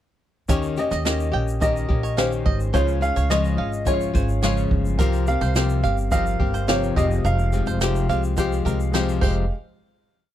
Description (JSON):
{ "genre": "acoustic pop", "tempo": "107 BPM", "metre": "4/4", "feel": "straight", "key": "F minor", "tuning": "A4 = 438 Hz", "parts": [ { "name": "nylon-string guitar", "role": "accompaniment", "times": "0.5-9.5 s", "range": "F2 to G4", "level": "-25 LUFS", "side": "left 7 dB", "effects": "none" }, { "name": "warm concert grand piano", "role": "accompaniment", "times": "0.5-9.5 s", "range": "Ab3 to F5", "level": "-33 LUFS", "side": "equal", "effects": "none" }, { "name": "bluegrass banjo", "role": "arpeggios", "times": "0.5-9.5 s", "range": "Bb4 to G5", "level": "-30 LUFS", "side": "right 9 dB", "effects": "none" }, { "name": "upright bass", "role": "bass", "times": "0.5-9.5 s", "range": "F1 to Eb2", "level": "-23 LUFS", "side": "right 1 dB", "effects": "none" }, { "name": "jazz brush drum kit", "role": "drums", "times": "0.5-9.4 s", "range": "crash cymbal, kick drum, shaker, snare drum", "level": "-25 LUFS", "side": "right 1 dB", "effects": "none" }, { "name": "dark upright piano", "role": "melody", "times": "0.8-8.9 s", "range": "C5 to F5", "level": "-27 LUFS", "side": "right 1 dB", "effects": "none" } ], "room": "small room ambience", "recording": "dry, close 1970s-style studio recording", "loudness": "-19 LUFS", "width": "side -12 dB against mid", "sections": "0.5-9.5 chorus; 9.5-10.3 final hit", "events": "none", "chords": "0.5 Eb7; 2.7 Db; 5.0 C7sus4; 7.0 Fmadd9; 9.5 N.C.", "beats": "| 0.49 1.05 1.62 2.18 | 2.74 3.31 3.87 4.43 | 5.00 5.56 6.12 6.68 | 7.25 7.81 8.37 8.93 | 9.50" }